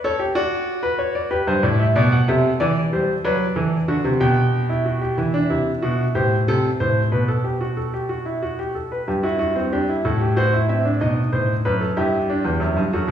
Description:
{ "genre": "classical, baroque-style 3-part fugue for grand piano", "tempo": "62 BPM (dotted quarters)", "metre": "6/8", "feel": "straight", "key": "G major, E minor from 5.2 s", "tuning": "A4 = 436 Hz", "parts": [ { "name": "clear baby grand piano", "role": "solo", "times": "0.0-13.1 s", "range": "E2 to G5", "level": "-18 LUFS", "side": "equal", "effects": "none" } ], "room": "wet recital hall reverb, RT60 1.5 s", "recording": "recorded in a church or concert hall, small room ambience", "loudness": "-18 LUFS", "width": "side -9 dB against mid", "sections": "0.0-5.2 A section; 5.2-9.1 B section; 9.1-13.1 C section", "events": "none", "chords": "0.4 D/F#; 1.3 G; 2.3 Am7/C; 3.2 D7; 4.2 G/B; 5.2 E5; 6.1 Am; 7.1 B5; 9.1 Em/G; 10.0 F#m7b5/A; 11.0 B7; 12.0 Em/G" }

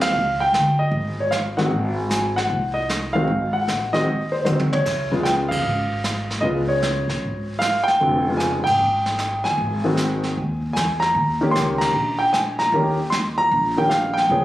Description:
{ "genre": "jazz piano trio", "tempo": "153 BPM", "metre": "4/4", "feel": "swing 67% on 8ths", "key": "Ab major", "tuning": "A4 = 441 Hz", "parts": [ { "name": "warm baby grand piano", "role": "melody", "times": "0.0-14.4 s", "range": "Db3 to C6", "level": "-20 LUFS", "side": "equal", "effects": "none" }, { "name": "upright bass", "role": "bass", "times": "0.0-14.4 s", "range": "F1 to Ab2", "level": "-26 LUFS", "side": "equal", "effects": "none" }, { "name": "vintage brush drum kit", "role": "drums", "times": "0.0-14.4 s", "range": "brushed snare drum, crash cymbal, hi-hat, kick drum, ride cymbal, snare drum, toms", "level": "-28 LUFS", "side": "right 1 dB", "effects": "none" } ], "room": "light reverb", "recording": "recorded on a phone in the room, club reverb", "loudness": "-18 LUFS", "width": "side -15 dB against mid", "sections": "0.0-14.4 A section", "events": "drum fill 4.5-4.9; band accent 5.5, 8.6, 11.7", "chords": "0.1 Db5; 1.7 Ab7; 4.9 Db7; 9.6 Ab7; 11.2 Eb7" }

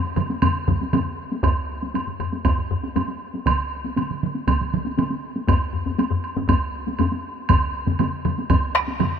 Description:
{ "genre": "japanese traditional, taiko drum ensemble", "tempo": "119 BPM", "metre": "4/4", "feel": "straight", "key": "none", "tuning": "none", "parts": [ { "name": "solo taiko drums", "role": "percussion", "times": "0.2-9.1 s", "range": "none", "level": "-26 LUFS", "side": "right 6 dB", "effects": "none" }, { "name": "taiko ensemble", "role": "percussion", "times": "0.2-9.1 s", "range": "none", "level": "-24 LUFS", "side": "left 4 dB", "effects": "none" }, { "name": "woodblock", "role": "percussion", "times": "0.2-9.1 s", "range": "none", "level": "-28 LUFS", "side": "right 4 dB", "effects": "none" }, { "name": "taiko ensemble", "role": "percussion", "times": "0.3-9.1 s", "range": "none", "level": "-26 LUFS", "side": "equal", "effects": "none" }, { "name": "solo taiko drums", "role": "percussion", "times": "0.7-8.6 s", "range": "none", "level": "-25 LUFS", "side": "right 2 dB", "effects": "none" } ], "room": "light reverb", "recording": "minimal, uncompressed stereo recording", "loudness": "-20 LUFS", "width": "side -7 dB against mid", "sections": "0.0-1.4 A section; 1.4-9.2 B section", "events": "none", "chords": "none" }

